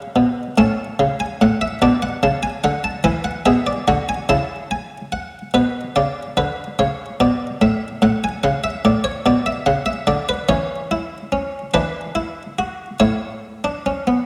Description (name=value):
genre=classical, baroque-style 3-part fugue for harpsichord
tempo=48 BPM (dotted quarters)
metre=6/8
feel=straight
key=A major from 10.5 s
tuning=A4 = 440 Hz
part: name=buff-stop harpsichord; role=solo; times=0.0-14.3 s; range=A2 to A5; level=-20 LUFS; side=equal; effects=none
room=moderate scoring stage reverb, RT60 1.9 s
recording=none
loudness=-20 LUFS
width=mono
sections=0.0-5.5 A section; 5.5-14.3 B section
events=none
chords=0.0 N.C.; 0.6 A; 1.8 Bm7; 3.1 E7; 4.3 A/C#; 5.5 Bmadd9; 6.8 C#m; 8.0 F#m/A; 9.3 Bm; 10.5 C#m/E; 11.7 E5; 13.0 A